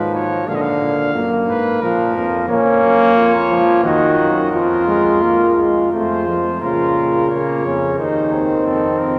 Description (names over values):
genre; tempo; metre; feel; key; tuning
classical, imitative canzona for brass ensemble; 89 BPM; 3/4; straight; Bb minor; A4 = 438 Hz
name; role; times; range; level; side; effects
warm trumpet; melody; 0.0-9.2 s; A4 to F5; -27 LUFS; equal; none
clear trombone; accompaniment; 0.0-9.2 s; Db3 to Bb3; -19 LUFS; equal; none
mellow bass trombone; bass; 0.0-9.2 s; Db2 to Bb2; -28 LUFS; equal; none
warm flugelhorn; second line; 2.5-9.2 s; Bb3 to Gb4; -20 LUFS; equal; none
room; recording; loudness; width
wet cathedral reverb, RT60 5.0 s; none; -16 LUFS; mono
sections
0.0-6.6 A section; 6.6-9.2 B section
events
none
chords
0.5 Bb; 1.8 Bb5; 2.5 Bbm; 3.8 Ebm; 4.5 Fsus4; 5.9 F; 6.6 Bbm; 8.0 Cm/Eb; 8.7 F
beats
| 0.48 1.15 1.82 | 2.49 3.16 3.84 | 4.52 5.21 5.92 | 6.62 7.31 7.99 | 8.66